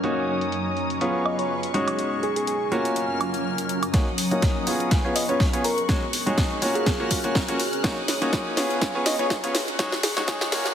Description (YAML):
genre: piano house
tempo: 123 BPM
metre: 4/4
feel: swing 55% on 16ths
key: Eb minor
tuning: A4 = 439 Hz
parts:
  - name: dark studio string section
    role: sustained chords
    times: 0.0-10.7 s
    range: Ab4 to Gb6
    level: -33 LUFS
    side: left 3 dB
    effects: sidechain pumping
  - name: bright baby grand piano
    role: riff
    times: 0.0-10.7 s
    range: Ab3 to Db5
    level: -26 LUFS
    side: equal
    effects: sidechain pumping, low-pass filter, dub echo
  - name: house drum kit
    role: drums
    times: 0.0-10.7 s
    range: hi-hat, snare drum, woodblock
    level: -28 LUFS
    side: equal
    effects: none
  - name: granular cloud pad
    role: texture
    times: 0.0-10.7 s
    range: Gb3 to Bb5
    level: -31 LUFS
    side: equal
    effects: built-in reverb, sidechain pumping
  - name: soft struck synth lead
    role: melody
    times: 1.3-10.6 s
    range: Ab4 to Eb5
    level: -30 LUFS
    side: equal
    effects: chorus, cassette tape, dub echo
  - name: electronic kick drum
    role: drums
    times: 3.9-10.4 s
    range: none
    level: -23 LUFS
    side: equal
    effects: overdrive
room: moderate lush hall reverb, RT60 1.9 s, digital ambience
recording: heavily compressed radio sound, high-pass filter, low-pass filter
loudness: -21 LUFS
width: side -9 dB against mid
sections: 0.0-3.9 A section; 3.9-10.7 B section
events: build-up 3.9-10.7; drum fill 3.9-10.7; filter sweep on grand piano 3.9-10.7; filter sweep 3.9-10.7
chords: 0.0 Ebm7; 1.0 Db7; 1.7 Ab7sus4; 2.7 Gbmaj7; 3.9 Ebm7; 4.9 Db7; 5.6 Ab7sus4; 6.6 Gbmaj7; 7.8 Ebm7; 8.8 Db7; 9.5 Ab7sus4